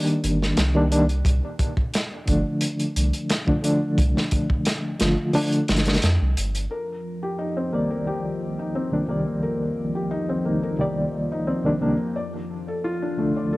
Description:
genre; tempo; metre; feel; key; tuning
trip hop; 88 BPM; 4/4; straight; C dorian; A4 = 440 Hz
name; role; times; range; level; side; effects
reed electric piano; accompaniment; 0.0-13.6 s; C2 to D5; -24 LUFS; equal; fast tremolo, cassette tape, tape echo
crunchy breakbeat drum kit; drums; 0.1-6.7 s; hi-hat, kick drum, snare drum; -24 LUFS; equal; cassette tape
soft dub sub bass; bass; 0.2-6.7 s; G1 to F2; -22 LUFS; equal; none
string machine, cellos; sustained chords; 6.7-13.6 s; F3 to F4; -31 LUFS; equal; phaser, ensemble chorus, cassette tape
felt-muted upright piano; arpeggios; 6.7-13.6 s; A3 to D5; -27 LUFS; left 2 dB; low-pass filter, cassette tape, tape echo
room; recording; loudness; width
light reverb, small room ambience; home recording on cassette; -21 LUFS; side -21 dB against mid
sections
0.0-6.7 A section; 6.7-13.6 B section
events
filter sweep on felt piano 6.7-13.6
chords
0.0 Cm7; 1.2 Dm; 6.7 Cm7; 12.2 Dm

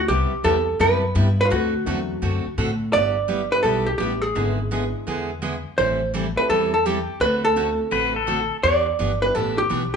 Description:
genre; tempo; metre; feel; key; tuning
country, western swing; 168 BPM; 4/4; swing 65% on 8ths; G major; A4 = 442 Hz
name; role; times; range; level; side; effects
vintage hollow-body jazz guitar; melody; 0.0-10.0 s; F4 to D5; -21 LUFS; right 1 dB; none
upright bass; bass; 0.0-10.0 s; G1 to A2; -25 LUFS; left 1 dB; none
picked steel-string acoustic guitar; accompaniment; 0.1-9.8 s; C3 to A4; -27 LUFS; right 2 dB; none
dark upright piano; accompaniment; 0.4-9.3 s; F#3 to A4; -33 LUFS; left 4 dB; none
pedal steel guitar; second line; 7.9-8.6 s; A4 to B4; -23 LUFS; left 7 dB; none
room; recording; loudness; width
moderate large studio reverb, RT60 0.9 s; band playing live in one room, nothing above 10.8 kHz; -19 LUFS; side -6 dB against mid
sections
0.0-2.9 A section; 2.9-10.0 B section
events
none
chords
0.1 Cmaj7; 1.5 D7; 2.9 G6; 4.4 E7/G#; 5.8 Am7; 7.2 D7; 8.6 Em7

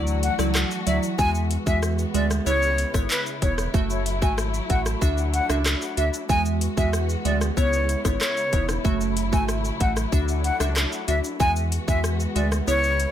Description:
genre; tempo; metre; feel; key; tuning
dancehall; 94 BPM; 4/4; straight; unclear; A4 = 439 Hz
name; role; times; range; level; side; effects
glassy wavetable pluck; accompaniment; 0.0-13.1 s; F#3 to E5; -28 LUFS; right 2 dB; chorus
warm studio string section; sustained chords; 0.0-13.1 s; C#3 to F#4; -33 LUFS; left 2 dB; sidechain pumping
round analog bass; bass; 0.0-13.1 s; E1 to E2; -25 LUFS; equal; none
impact; sound effects; 0.0-1.2 s; none; barely audible; none; none
island pop drum kit; drums; 0.1-13.1 s; handclaps, hi-hat, kick drum, rim click, shaker; -26 LUFS; equal; overdrive
tube shaker and timbales; percussion; 0.1-13.0 s; none; -39 LUFS; left 9 dB; none
bright silver concert flute; melody; 0.2-13.1 s; B4 to G#5; -26 LUFS; left 1 dB; ping-pong delay
room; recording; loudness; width
little or no reverb; none; -20 LUFS; side -10 dB against mid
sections
0.0-13.1 A section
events
impact 0.0-1.2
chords
0.0 Dadd9; 1.2 Eadd9; 2.5 C#m7; 3.7 F#m7; 5.0 Dadd9; 6.3 Eadd9; 7.6 C#m7; 8.8 F#m7; 10.1 Dadd9; 11.4 Eadd9

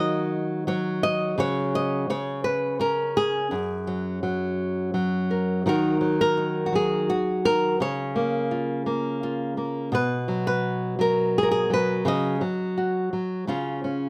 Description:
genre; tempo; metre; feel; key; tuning
folk, solo fingerstyle acoustic guitar; 84 BPM; 3/4; straight; unclear; A4 = 440 Hz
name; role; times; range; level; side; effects
nylon-string guitar; solo; 0.0-14.1 s; F#2 to D#5; -25 LUFS; equal; none
room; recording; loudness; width
light reverb; close, detailed microphones; -25 LUFS; mono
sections
0.0-5.7 A section; 5.7-14.1 B section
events
none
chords
0.0 D#m; 1.4 F#5/C#; 2.1 N.C.; 3.5 F#add9; 5.7 D#m; 7.8 A#m/C#; 9.9 B5; 12.1 F#5/C#; 13.5 C#add9

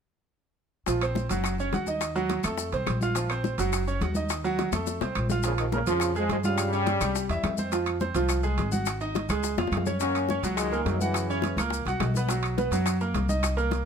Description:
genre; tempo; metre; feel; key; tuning
latin, salsa; 210 BPM; 4/4; straight; Bb minor; A4 = 440 Hz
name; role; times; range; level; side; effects
bright baby grand piano; accompaniment; 0.9-13.8 s; F3 to Gb5; -29 LUFS; right 4 dB; none
upright bass; bass; 0.9-13.8 s; Gb1 to G2; -30 LUFS; equal; none
bongos; percussion; 0.9-13.9 s; none; -34 LUFS; left 12 dB; none
congas; percussion; 0.9-13.9 s; none; -34 LUFS; left 1 dB; none
maracas; percussion; 0.9-13.9 s; none; -39 LUFS; left 10 dB; none
timbales; percussion; 0.9-13.9 s; none; -37 LUFS; right 9 dB; none
claves; percussion; 1.0-13.6 s; none; -39 LUFS; left 13 dB; none
bright trombone section; melody; 5.5-7.6, 10.0-11.6 s; Bb2 to Db4; -29 LUFS; left 2 dB; none
room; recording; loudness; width
light reverb; close, detailed microphones; -24 LUFS; side -7 dB against mid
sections
0.9-5.4 A section; 5.4-13.9 B section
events
drum fill 4.7-5.4, 9.6-10.0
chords
0.9 Bbsus2; 1.4 Gb5; 2.0 Ebmadd9; 2.6 F; 3.2 Bbsus2; 3.7 Gb5; 4.3 Ebmadd9; 4.9 F; 5.4 Bbm7; 6.6 Dbmaj7#11; 7.2 C; 7.7 Fm; 8.9 Ab5; 9.4 Db; 10.0 Gb69; 11.1 Gb7; 12.3 Bmaj7

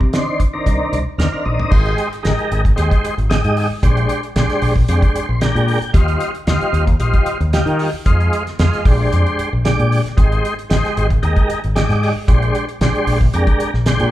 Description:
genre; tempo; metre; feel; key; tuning
electric jazz fusion; 114 BPM; 4/4; straight; unclear; A4 = 440 Hz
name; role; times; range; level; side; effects
fretless electric bass; bass; 0.0-14.1 s; Ab1 to Eb3; -18 LUFS; equal; none
damped 70s drum kit; drums; 0.0-14.1 s; crash cymbal, hi-hat, kick drum, snare drum, toms; -17 LUFS; equal; none
tonewheel organ; accompaniment; 0.1-14.1 s; Eb3 to G5; -19 LUFS; equal; slow rotary speaker, chorus vibrato
room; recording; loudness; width
light reverb; band playing live in one room; -14 LUFS; side -14 dB against mid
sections
0.0-1.7 A section; 1.7-14.1 B section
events
tonewheel organ fill 0.9-1.7, 4.9-6.0, 13.6-14.1; drum fill 1.5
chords
0.0 Cm9; 1.7 Abmaj7; 3.8 Bb13; 6.0 Eb69; 8.1 Fm7; 8.9 Bb13; 10.2 Abmaj7; 12.3 Bb13

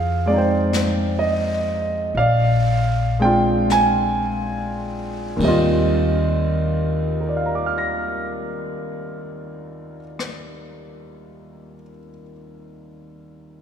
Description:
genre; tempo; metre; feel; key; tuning
jazz ballad; 34-45 BPM; 4/4; swing 69% on 8ths; Eb major; A4 = 441 Hz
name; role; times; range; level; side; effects
clear concert grand piano; accompaniment; 0.0-13.6 s; Eb2 to Bb6; -21 LUFS; right 1 dB; none
upright bass; bass; 0.0-9.9 s; Bb1 to F2; -23 LUFS; left 1 dB; none
jazz brush drum kit; drums; 0.7-10.5 s; brushed snare drum, hi-hat, kick drum, ride cymbal, rim click, snare drum; -32 LUFS; left 3 dB; none
room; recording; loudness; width
wet church reverb, RT60 2.8 s; recorded in a church or concert hall; -18 LUFS; side -8 dB against mid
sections
0.0-5.4 A section; 5.4-12.5 B section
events
slowing down 0.0-5.4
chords
0.0 Fm7; 2.2 Bb7; 5.4 Eb69

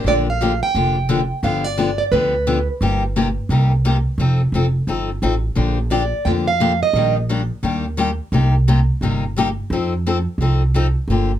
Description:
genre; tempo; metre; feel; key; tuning
acoustic string swing (jazz manouche); 174 BPM; 4/4; swing 61% on 8ths; Bb major; A4 = 438 Hz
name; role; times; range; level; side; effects
picked plugged-in steel-string acoustic guitar; melody; 0.0-2.7, 5.9-7.1 s; B4 to G5; -20 LUFS; right 4 dB; slapback echo
picked steel-string acoustic guitar; accompaniment; 0.0-11.3 s; C3 to A4; -20 LUFS; left 4 dB; none
upright bass; bass; 0.0-11.4 s; F1 to F2; -19 LUFS; right 1 dB; none
room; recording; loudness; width
light reverb; none; -16 LUFS; side -11 dB against mid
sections
0.1-11.1 A section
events
none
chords
0.1 Bb6; 1.4 G7; 2.8 Cm7/G; 4.2 F7; 5.6 Bb6; 6.9 Ebmaj7/Bb; 8.3 Cm7; 9.7 F7

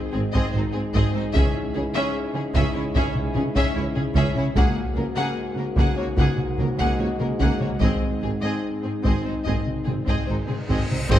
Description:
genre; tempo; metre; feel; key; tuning
cinematic, epic orchestral film score; 74 BPM; 4/4; straight; Ab mixolydian; A4 = 440 Hz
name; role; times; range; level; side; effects
mellow French horn section; sustained chords; 0.0-11.2 s; Ab3 to Ab4; -31 LUFS; left 4 dB; none
warm trombone section; sustained chords; 0.0-11.2 s; Ab2 to Ab3; -32 LUFS; right 1 dB; none
warm symphonic violin section; melody; 0.1-11.2 s; Ab4 to Gb5; -32 LUFS; left 4 dB; none
warm symphonic violin section; second line; 0.1-11.2 s; C4 to Ab4; -34 LUFS; left 1 dB; none
warm symphonic viola section; accompaniment; 0.1-11.2 s; Bb3 to Db4; -30 LUFS; right 1 dB; none
rich symphonic double bass section; bass; 0.1-11.2 s; Ab1 to Db2; -27 LUFS; right 2 dB; none
warm symphonic cello section; bass; 0.1-11.2 s; Ab2 to Db3; -30 LUFS; right 2 dB; none
warm tuba; bass; 0.1-11.2 s; Ab1 to Db2; -32 LUFS; right 2 dB; none
taiko ensemble; drums; 0.4-11.2 s; none; -25 LUFS; equal; none
cymbal swell, clash cymbals and concert bass drum; percussion; 7.8-11.2 s; none; -35 LUFS; equal; none
reverse cymbal and impact; sound effects; 10.4-11.2 s; none; -36 LUFS; left 1 dB; none
warm trumpet; stabs; 11.1-11.2 s; C5; -26 LUFS; equal; none
room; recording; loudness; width
moderate scoring stage reverb, RT60 2.0 s; dark, warm production; -21 LUFS; side -12 dB against mid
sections
0.0-11.1 A section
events
reverse cymbal 10.4-11.1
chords
0.0 Ab; 1.4 Dbm; 4.6 Gbadd9/Db; 7.8 Ab

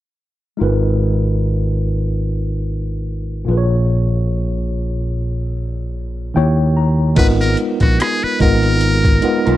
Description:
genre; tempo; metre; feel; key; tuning
R&B, neo-soul; 73 BPM; 4/4; swing 56% on 16ths; G# dorian; A4 = 440 Hz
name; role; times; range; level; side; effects
tine electric piano; accompaniment; 0.6-9.6 s; A#2 to A#5; -20 LUFS; equal; medium stereo tremolo
fretless electric bass; bass; 0.6-9.6 s; G#1 to D#2; -17 LUFS; equal; none
trumpet with metal mute; melody; 7.2-9.6 s; F#4 to B4; -20 LUFS; equal; slapback echo
boom bap sampler-style drum kit; drums; 7.2-9.6 s; crash cymbal, hi-hat, kick drum, rim click; -16 LUFS; equal; none
electric guitar through a small old amp; second line; 9.5-9.6 s; B3 to A#4; -17 LUFS; right 9 dB; none
room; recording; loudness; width
digital ambience; dry, close 1970s-style studio recording; -14 LUFS; side -14 dB against mid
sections
0.6-7.2 A section; 7.2-9.6 B section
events
tine electric piano fill 5.9-7.2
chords
0.6 G#m69; 3.5 A#m7; 6.3 D#7b9; 7.2 G#m69

